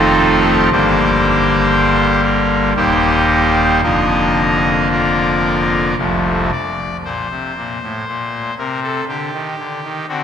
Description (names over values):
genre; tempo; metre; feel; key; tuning
classical, chorale-style piece for pipe organ; 58 BPM; 3/4; uneven beats, rubato; unclear; A4 = 441 Hz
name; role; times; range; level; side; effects
pipe organ, trumpet; solo; 0.0-10.2 s; Eb1 to Eb5; -13 LUFS; equal; none
room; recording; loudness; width
wet cathedral reverb, RT60 4.2 s; none; -13 LUFS; side -8 dB against mid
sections
0.0-7.1 A section; 7.1-10.2 B section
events
none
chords
0.0 F7; 0.7 Gm; 2.8 Cm7/Eb; 3.8 Bb/F; 6.0 F; 7.1 Am; 9.1 Ebmaj7/D